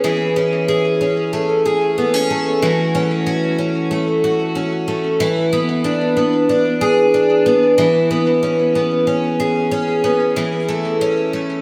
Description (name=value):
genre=dream pop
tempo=93 BPM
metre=4/4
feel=straight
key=E mixolydian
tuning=A4 = 440 Hz
part: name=picked twelve-string acoustic guitar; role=solo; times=0.0-11.6 s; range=E3 to G#4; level=-17 LUFS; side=equal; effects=lush chorus, tape echo
room=wet plate reverb, RT60 2.9 s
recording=dreamy mix soaked in reverb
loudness=-17 LUFS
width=mono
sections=0.0-5.2 A section; 5.2-11.6 B section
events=none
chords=0.0 E6; 2.6 A6/E; 5.2 E7; 7.8 E6; 10.4 Amaj7/E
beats=| 0.04 0.69 1.33 1.98 | 2.62 3.27 3.91 4.56 | 5.21 5.85 6.50 7.14 | 7.79 8.43 9.08 9.72 | 10.37 11.01